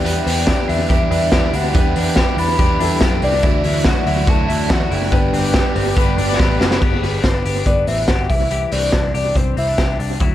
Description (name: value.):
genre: jangly indie pop.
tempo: 142 BPM.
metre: 4/4.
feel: straight.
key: G major.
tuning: A4 = 440 Hz.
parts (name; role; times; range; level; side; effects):
soft octave-layered synth lead; melody; 0.0-10.0 s; B4 to B5; -22 LUFS; left 1 dB; chorus, tremolo, analog delay.
overdriven electric guitar; accompaniment; 0.0-6.8 s; G2 to B4; -24 LUFS; right 9 dB; analog delay.
warm upright piano; accompaniment; 0.0-6.8 s; D4 to D5; -28 LUFS; left 4 dB; none.
twelve-string electric guitar; arpeggios; 0.0-10.3 s; E3 to G4; -25 LUFS; left 7 dB; analog delay.
vintage muted picked electric bass; bass; 0.0-10.3 s; F#1 to F#2; -21 LUFS; equal; none.
phased analog pad; sustained chords; 0.1-6.8 s; D3 to G4; -28 LUFS; right 1 dB; none.
raw garage drum kit; drums; 0.1-10.3 s; crash cymbal, hi-hat, kick drum, snare drum; -17 LUFS; equal; analog delay.
breathy trumpet; second line; 5.3-6.8 s; G4 to D5; -27 LUFS; left 8 dB; analog delay.
room: light reverb, small room ambience.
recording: echo-heavy mix.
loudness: -14 LUFS.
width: side -12 dB against mid.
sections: 0.0-6.8 A section; 6.8-10.3 B section.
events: drum fill 6.4-6.8.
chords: 0.0 Em7; 3.4 Dadd9; 5.1 G; 8.3 Cadd9.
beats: | 0.06 0.48 0.90 1.32 | 1.75 2.17 2.59 3.01 | 3.44 3.86 4.28 4.70 | 5.12 5.55 5.97 6.39 | 6.82 7.24 7.66 8.09 | 8.51 8.93 9.36 9.78 | 10.20.